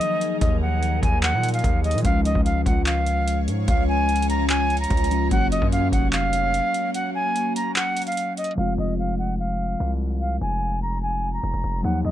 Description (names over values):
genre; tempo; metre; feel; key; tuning
hip hop, trap; 147 BPM; 4/4; half-time; F phrygian; A4 = 442 Hz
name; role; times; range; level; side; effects
reedy silver concert flute; melody; 0.0-12.1 s; Eb5 to Bb5; -25 LUFS; equal; none
mellow tine electric piano; accompaniment; 0.0-12.1 s; F3 to Gb4; -28 LUFS; left 2 dB; wide subtle chorus
ethereal airy pad; sustained chords; 0.0-8.5 s; Eb3 to Db5; -30 LUFS; left 1 dB; ensemble chorus, built-in reverb, phaser
booming analog drum machine; drums; 0.0-8.6 s; handclaps, hi-hat, kick drum; -24 LUFS; equal; none
distorted 808-style bass; bass; 0.4-12.1 s; F1 to Bb2; -24 LUFS; equal; distortion, tube saturation
room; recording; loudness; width
little or no reverb; dry, gritty hardware recording, low-pass filter; -20 LUFS; side -12 dB against mid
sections
0.0-8.6 A section; 8.6-12.1 B section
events
break 6.9-8.6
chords
0.0 Ebmadd9; 2.0 Db; 5.3 Gb; 8.6 Fm